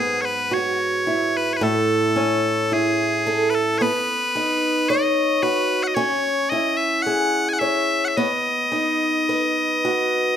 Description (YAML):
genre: celtic folk, Celtic slow air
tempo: 55 BPM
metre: 4/4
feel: rubato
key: unclear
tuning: A4 = 440 Hz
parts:
  - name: loud bright bagpipes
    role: melody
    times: 0.0-10.4 s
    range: G#4 to G#5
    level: -21 LUFS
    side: left 1 dB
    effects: none
  - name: picked old ladder-braced acoustic guitar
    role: accompaniment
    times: 0.0-10.4 s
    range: G#2 to C#5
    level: -21 LUFS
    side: equal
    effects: none
room: light reverb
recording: close, detailed microphones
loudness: -18 LUFS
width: side -9 dB against mid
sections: 0.0-10.4 A section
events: none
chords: 0.0 Eadd9/G#; 1.6 A; 3.8 Badd9; 5.9 C#m; 8.1 B